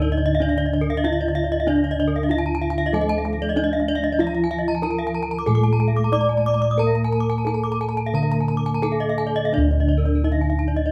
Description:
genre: Balinese gamelan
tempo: 85-95 BPM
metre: 4/4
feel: straight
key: D pelog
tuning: A4 = 440 Hz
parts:
  - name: gamelan-type bronze metallophone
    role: melody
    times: 0.0-10.9 s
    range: D4 to D5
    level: -28 LUFS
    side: equal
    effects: slapback echo
  - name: gamelan-type bronze metallophone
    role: accompaniment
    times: 0.0-9.5 s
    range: D3 to Bb3-40c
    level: -32 LUFS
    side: equal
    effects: none
  - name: gamelan-type bronze metallophone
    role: arpeggios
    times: 0.0-10.9 s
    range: Bb4-40c to Eb6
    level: -30 LUFS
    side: equal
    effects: none
  - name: gamelan-type bronze metallophone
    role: arpeggios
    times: 0.0-10.9 s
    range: Bb4-40c to D6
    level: -30 LUFS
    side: equal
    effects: none
  - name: gamelan-type bossed gongs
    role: bass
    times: 0.0-10.9 s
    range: D2 to Bb4-40c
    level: -24 LUFS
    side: equal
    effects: none
room: moderate studio reverb, RT60 0.5 s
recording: band playing live in one room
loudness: -21 LUFS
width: mono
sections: 0.0-9.5 A section; 9.5-10.9 B section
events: none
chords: none

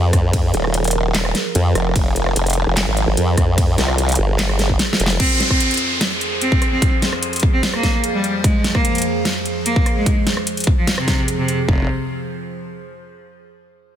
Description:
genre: heavy wobble dubstep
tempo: 148 BPM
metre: 4/4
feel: half-time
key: F minor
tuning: A4 = 442 Hz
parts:
  - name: evolving wavetable pad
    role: sustained chords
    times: 0.0-11.9 s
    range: F2 to C5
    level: -25 LUFS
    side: right 2 dB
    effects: phaser, built-in reverb, sidechain pumping
  - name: formant-sweep wobble bass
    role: bass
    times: 0.0-5.2 s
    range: F1 to F2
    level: -16 LUFS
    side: equal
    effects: chorus, overdrive
  - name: dubstep drum kit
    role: drums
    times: 0.1-11.8 s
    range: kick drum, toms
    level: -18 LUFS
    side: equal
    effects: overdrive, small room ambience
  - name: dubstep drum kit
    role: drums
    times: 0.1-11.6 s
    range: crash cymbal, handclaps, hi-hat, ride cymbal, rim click, snare drum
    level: -22 LUFS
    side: equal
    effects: small room ambience
  - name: formant-sweep wobble bass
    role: bass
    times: 0.5-4.2, 11.7-11.9 s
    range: Eb1 to C2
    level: -18 LUFS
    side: equal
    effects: chorus, overdrive
  - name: rich cello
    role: melody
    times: 5.2-11.8 s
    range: C3 to C4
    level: -21 LUFS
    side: right 1 dB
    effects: tape echo
  - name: downlifter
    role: sound effects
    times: 5.2-8.4 s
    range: none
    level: -23 LUFS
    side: equal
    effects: none
room: light reverb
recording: dense, heavily limited modern master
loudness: -15 LUFS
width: side -10 dB against mid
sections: 0.0-5.2 A section; 5.2-11.7 B section; 11.7-13.3 C section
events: drop 0.0-5.2; drum fill 4.8-5.2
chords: 0.0 Fm; 11.7 F

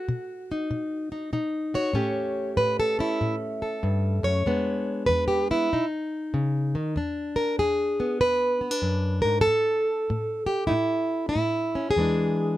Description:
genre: acoustic country blues, solo or duo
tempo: 96 BPM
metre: 4/4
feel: swing 65% on 8ths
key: E mixolydian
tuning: A4 = 439 Hz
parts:
  - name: fingerpicked plugged-in old ladder-braced acoustic guitar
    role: solo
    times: 0.0-12.6 s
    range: E2 to C#5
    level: -23 LUFS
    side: equal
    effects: none
room: little or no reverb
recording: close, detailed microphones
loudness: -23 LUFS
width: side -14 dB against mid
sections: 0.0-7.0 A section; 7.0-12.6 B section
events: steel-string acoustic guitar solo 0.0-7.0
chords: 0.0 B; 2.0 A7; 4.5 E7; 5.7 B; 7.0 E7; 9.5 A5; 12.0 E7

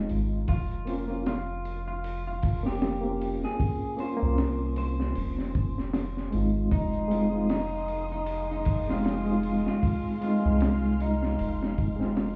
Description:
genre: trip hop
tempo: 77 BPM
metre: 4/4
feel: swing 57% on 16ths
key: F minor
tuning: A4 = 440 Hz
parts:
  - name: electric guitar at the edge of break-up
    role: melody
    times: 0.0-12.4 s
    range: Eb4 to C5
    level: -37 LUFS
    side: equal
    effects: dub echo
  - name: reed electric piano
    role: accompaniment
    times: 0.0-12.4 s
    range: Ab3 to G4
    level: -31 LUFS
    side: equal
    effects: overdrive, fast tremolo
  - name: soft dub sub bass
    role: bass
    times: 0.0-12.4 s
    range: F1 to C2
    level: -33 LUFS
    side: equal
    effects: none
  - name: crunchy breakbeat drum kit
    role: drums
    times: 0.1-12.4 s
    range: hi-hat, kick drum, snare drum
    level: -32 LUFS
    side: equal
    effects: none
  - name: dark studio violin section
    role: sustained chords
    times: 6.7-12.4 s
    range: Ab3 to F6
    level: -44 LUFS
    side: equal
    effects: vintage 12-bit sampler grit
room: light reverb, studio ambience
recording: heard muffled through a wall, club ambience, EQ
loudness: -28 LUFS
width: mono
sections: 0.0-12.4 A section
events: fade-out 10.9-12.4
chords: 0.5 Bbmadd9/F; 6.7 Fm7

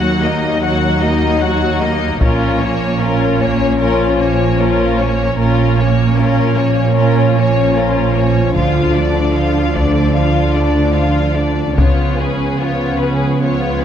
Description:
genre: cinematic, epic orchestral film score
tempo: 76 BPM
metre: 4/4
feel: straight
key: unclear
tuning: A4 = 439 Hz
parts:
  - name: rich symphonic violin section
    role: melody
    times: 0.0-13.8 s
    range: A#4 to F#5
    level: -22 LUFS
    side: left 4 dB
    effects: none
  - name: rich symphonic violin section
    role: second line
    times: 0.0-13.8 s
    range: C#4 to G#4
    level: -22 LUFS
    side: left 4 dB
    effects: none
  - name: rich symphonic viola section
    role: accompaniment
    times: 0.0-13.8 s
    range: F3 to C#4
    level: -22 LUFS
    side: right 1 dB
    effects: none
  - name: warm French horn section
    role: sustained chords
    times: 0.0-13.8 s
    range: E#3 to D#4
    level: -19 LUFS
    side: left 3 dB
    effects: none
  - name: rich symphonic cello section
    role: bass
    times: 0.0-13.8 s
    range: D#2 to D3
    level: -19 LUFS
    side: right 3 dB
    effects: none
  - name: rich symphonic double bass section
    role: bass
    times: 0.0-13.8 s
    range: A#1 to D#2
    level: -18 LUFS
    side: right 4 dB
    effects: none
  - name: taiko ensemble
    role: drums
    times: 2.2-3.8, 8.6-12.6 s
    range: none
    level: -18 LUFS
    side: left 1 dB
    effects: none
room: moderate concert hall reverb, RT60 2.1 s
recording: none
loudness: -12 LUFS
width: side -9 dB against mid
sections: 0.0-13.8 A section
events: build-up 0.0-13.8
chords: 0.0 D#m; 2.2 A#m; 8.6 Dm; 11.8 C#7

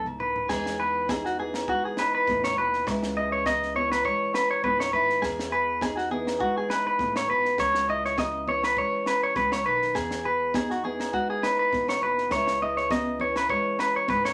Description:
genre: highlife guitar band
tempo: 102 BPM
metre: 4/4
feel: swing 54% on 16ths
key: E major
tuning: A4 = 439 Hz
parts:
  - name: nylon-string guitar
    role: accompaniment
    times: 0.0-14.3 s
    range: E2 to G#4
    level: -36 LUFS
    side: equal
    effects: none
  - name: clean electric guitar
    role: arpeggios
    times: 0.0-14.3 s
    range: F#4 to D#5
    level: -27 LUFS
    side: equal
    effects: none
  - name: upright bass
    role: bass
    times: 0.0-14.3 s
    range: G#1 to E2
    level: -43 LUFS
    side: equal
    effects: none
  - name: compact cocktail drum kit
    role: drums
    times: 0.1-14.3 s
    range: crash cymbal, kick drum, snare drum, toms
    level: -38 LUFS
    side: equal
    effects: none
  - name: agogo bells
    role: percussion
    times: 0.1-14.3 s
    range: none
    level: -42 LUFS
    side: equal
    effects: none
  - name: congas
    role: percussion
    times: 0.5-14.2 s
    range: none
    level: -36 LUFS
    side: equal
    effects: none
room: wet studio ambience, RT60 0.5 s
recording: none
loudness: -26 LUFS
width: mono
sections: 0.5-14.3 A section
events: drum fill 0.0-0.5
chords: 0.5 Emaj7; 2.9 C#m; 5.2 Emaj7; 7.6 C#m; 10.0 Emaj7; 12.3 C#m

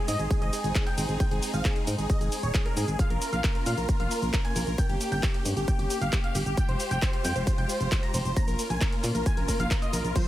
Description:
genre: uplifting trance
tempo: 134 BPM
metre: 4/4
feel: straight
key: unclear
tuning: A4 = 440 Hz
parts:
  - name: supersaw chords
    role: melody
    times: 0.0-10.3 s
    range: G4 to Bb5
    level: -33 LUFS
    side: equal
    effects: sidechain pumping, digital delay
  - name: clear baby grand piano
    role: second line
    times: 0.0-10.3 s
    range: G5 to Bb6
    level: -39 LUFS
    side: equal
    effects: sidechain pumping, dub echo
  - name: warm studio string section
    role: sustained chords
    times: 0.0-10.3 s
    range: Ab3 to G4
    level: -35 LUFS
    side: left 1 dB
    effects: sidechain pumping
  - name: solid FM bass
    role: bass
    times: 0.1-10.1 s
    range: Eb1 to Bb2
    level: -29 LUFS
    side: equal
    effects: sidechain pumping
  - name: punchy analog drum machine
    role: drums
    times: 0.1-10.2 s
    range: crash cymbal, handclaps, hi-hat, shaker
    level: -34 LUFS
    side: equal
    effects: none
  - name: electronic kick drum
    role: drums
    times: 0.3-10.2 s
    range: none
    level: -26 LUFS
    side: equal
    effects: none
  - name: wide unison pluck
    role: arpeggios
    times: 10.2 s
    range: F3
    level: -32 LUFS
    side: right 1 dB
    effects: sidechain pumping
room: little or no reverb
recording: none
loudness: -24 LUFS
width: side -14 dB against mid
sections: 0.0-10.3 A section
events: none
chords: 0.0 Ab; 3.0 Bbm; 4.8 Gdim; 6.6 Fmadd9; 8.4 Bbm

